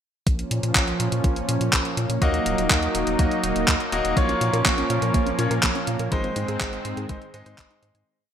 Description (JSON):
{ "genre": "italo disco", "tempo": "123 BPM", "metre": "4/4", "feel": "straight", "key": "Bb minor", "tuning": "A4 = 440 Hz", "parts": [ { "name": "lush unison pad", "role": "sustained chords", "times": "0.3-8.1 s", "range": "Eb3 to Eb4", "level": "-26 LUFS", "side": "right 1 dB", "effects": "chorus" }, { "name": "round analog bass", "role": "bass", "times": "0.3-8.0 s", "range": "Eb1 to Bb2", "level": "-28 LUFS", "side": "equal", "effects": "tube saturation" }, { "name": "clean 12-bit digital drum machine", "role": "drums", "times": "0.3-8.0 s", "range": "handclaps, hi-hat", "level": "-25 LUFS", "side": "equal", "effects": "overdrive, studio reverb, gated reverb" }, { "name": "electronic kick drum", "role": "drums", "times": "0.3-7.7 s", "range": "none", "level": "-23 LUFS", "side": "equal", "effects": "overdrive, studio reverb" }, { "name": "bright concert grand piano", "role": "stabs", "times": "2.2-8.0 s", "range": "Ab3 to Eb5", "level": "-27 LUFS", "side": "left 2 dB", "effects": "digital delay" }, { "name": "wide unison pluck", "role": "arpeggios", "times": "4.2-8.0 s", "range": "Ab3 to Ab5", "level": "-32 LUFS", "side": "right 3 dB", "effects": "digital delay" } ], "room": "moderate plate reverb, RT60 2.0 s", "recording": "bright 1980s-style digital production", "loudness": "-20 LUFS", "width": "side -9 dB against mid", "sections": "0.3-8.1 verse", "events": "fade-out 5.5-8.1", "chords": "0.3 Bbm; 2.2 Ebm; 4.2 Bbm; 6.1 Ab", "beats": "| 0.27 0.75 1.24 1.73 | 2.22 2.71 3.19 3.68 | 4.17 4.66 5.14 5.63 | 6.12 6.61 7.09 7.58" }